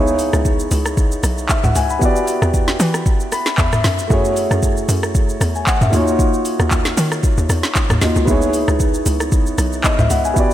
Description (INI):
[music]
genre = amapiano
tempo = 115 BPM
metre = 4/4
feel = swing 55% on 16ths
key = C# minor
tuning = A4 = 440 Hz
[part]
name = dark baby grand piano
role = accompaniment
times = 0.0-10.5 s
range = A3 to B5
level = -19 LUFS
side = equal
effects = none
[part]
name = tight log drum bass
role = bass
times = 0.0-10.3 s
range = B1 to E3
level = -19 LUFS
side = equal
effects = none
[part]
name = afro-pop drum kit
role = drums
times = 0.1-10.5 s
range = handclaps, hi-hat, kick drum, rim click, shaker, snare drum, toms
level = -18 LUFS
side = equal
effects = none
[sound]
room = moderate lush hall reverb, RT60 1.9 s, digital ambience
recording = dreamy mix soaked in reverb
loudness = -14 LUFS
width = side -12 dB against mid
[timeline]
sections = 0.0-10.5 A section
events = grand piano fill 3.1-4.1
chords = 0.0 C#m9; 2.0 Em9; 4.1 F#m9; 5.9 D#m9; 8.3 C#m9